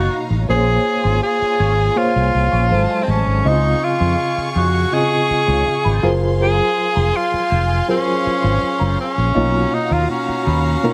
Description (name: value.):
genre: soul.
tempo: 81 BPM.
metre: 4/4.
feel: straight.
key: unclear.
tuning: A4 = 440 Hz.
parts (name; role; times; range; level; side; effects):
breathy tenor saxophone; melody; 0.0-10.9 s; C4 to Ab4; -21 LUFS; equal; none.
warm studio string section; second line; 0.0-10.9 s; Eb4 to Db6; -29 LUFS; equal; none.
barky reed electric piano; accompaniment; 0.0-10.9 s; Cb3 to F5; -24 LUFS; equal; fast tremolo.
clean electric guitar; riff; 0.0-10.9 s; C4 to Db5; -32 LUFS; equal; none.
fretless electric bass; bass; 0.0-10.7 s; F1 to F2; -20 LUFS; equal; none.
room: light reverb, small room ambience.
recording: none.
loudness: -17 LUFS.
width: mono.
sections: 0.0-10.9 A section.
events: none.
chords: 0.5 Bbm9; 2.7 Ab7b9; 3.5 Dbmaj9; 6.0 Gbmaj9#11; 9.4 Cbmaj9#11.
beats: | 0.49 1.23 1.97 2.71 | 3.45 4.19 4.93 5.67 | 6.41 7.15 7.89 8.62 | 9.36 10.10 10.84.